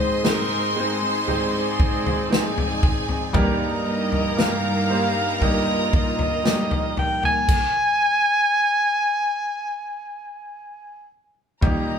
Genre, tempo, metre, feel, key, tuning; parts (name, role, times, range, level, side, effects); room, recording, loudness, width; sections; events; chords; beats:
pop ballad; 58 BPM; 4/4; straight; Eb major; A4 = 440 Hz
breathy alto saxophone; melody; 0.0-12.0 s; Ab4 to Ab5; -23 LUFS; equal
rich studio violin section; second line; 0.0-12.0 s; Ab4 to C6; -27 LUFS; equal
clear baby grand piano; accompaniment; 0.0-12.0 s; Eb2 to C5; -27 LUFS; right 2 dB
sweeping resonant pad; sustained chords; 0.0-7.5 s; G2 to Eb5; -28 LUFS; equal; chorus
fingerpicked steel-string acoustic guitar; arpeggios; 0.0-12.0 s; G2 to Ab4; -32 LUFS; left 2 dB
natural country drum kit; drums; 0.2-11.9 s; crash cymbal, kick drum, snare drum, toms; -22 LUFS; left 1 dB
wet large studio reverb, RT60 0.9 s; band playing live in one room; -19 LUFS; side -7 dB against mid
0.0-11.6 A section
0.0 Ab; 3.4 Eb/G; 7.5 N.C.
0.25 1.28 2.32 | 3.35 4.38 5.42 6.45 | 7.49 8.52 9.56 10.59 | 11.63